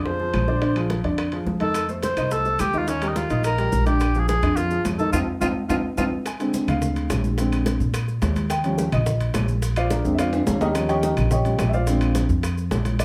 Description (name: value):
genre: Afro-Cuban jazz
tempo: 213 BPM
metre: 4/4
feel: straight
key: Bb mixolydian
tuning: A4 = 439 Hz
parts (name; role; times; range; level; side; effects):
- warm baby grand piano; accompaniment; 0.0-13.0 s; D3 to Ab5; -27 LUFS; equal; none
- upright bass; bass; 0.0-13.0 s; Bb1 to Bb2; -26 LUFS; equal; none
- mellow cor anglais; melody; 0.1-6.0 s; Db4 to C5; -28 LUFS; equal; none
- bongos; percussion; 0.1-13.0 s; none; -37 LUFS; equal; none
- congas; percussion; 0.1-13.0 s; none; -32 LUFS; equal; none
- claves; percussion; 0.3-13.0 s; none; -42 LUFS; equal; none
- timbales; percussion; 0.3-13.0 s; none; -34 LUFS; equal; none
- maracas; percussion; 1.7-13.0 s; none; -43 LUFS; equal; none
room: wet club reverb, RT60 0.6 s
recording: heard from further back in the room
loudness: -22 LUFS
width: mono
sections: 0.0-6.3 A section; 6.3-13.0 B section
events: band accent 5.1-6.3; drum fill 5.4-6.3, 10.3-10.8; grand piano solo 6.3-13.0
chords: 0.0 Bb9; 1.7 F7; 2.9 Ebadd9; 4.0 Bb7; 5.1 F5; 6.3 Bb9; 8.5 Eb9; 9.6 Bb9; 10.8 Eb9; 11.9 Bb9